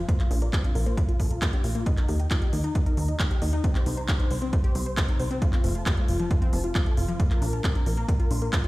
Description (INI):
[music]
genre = uplifting trance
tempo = 135 BPM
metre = 4/4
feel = straight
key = unclear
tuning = A4 = 435 Hz
[part]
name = big supersaw lead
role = melody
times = 0.0-8.7 s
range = Eb4 to C6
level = -36 LUFS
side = equal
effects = sidechain pumping, low-pass filter, digital delay
[part]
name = analog pluck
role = arpeggios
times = 0.0-8.7 s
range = F3 to Eb5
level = -33 LUFS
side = left 2 dB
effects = chorus, sidechain pumping, tape echo
[part]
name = plucky analog bass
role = bass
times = 0.0-8.5 s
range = F1 to Eb2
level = -26 LUFS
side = equal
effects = sidechain pumping
[part]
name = electronic kick drum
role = drums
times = 0.1-8.6 s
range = none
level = -24 LUFS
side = equal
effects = none
[part]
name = techno drum kit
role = drums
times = 0.1-8.7 s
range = handclaps, hi-hat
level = -34 LUFS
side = equal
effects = none
[sound]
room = digital ambience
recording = played on a big sound system in a bare room, stone room reverb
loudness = -22 LUFS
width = side -19 dB against mid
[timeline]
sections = 0.0-8.7 A section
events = filter sweep on synth pluck 0.0-8.7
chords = 0.1 Bb5; 1.9 N.C.; 5.4 F; 7.2 N.C.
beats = | 0.09 0.53 0.97 1.42 | 1.86 2.31 2.75 3.20 | 3.64 4.08 4.53 4.97 | 5.42 5.86 6.31 6.75 | 7.20 7.64 8.09 8.53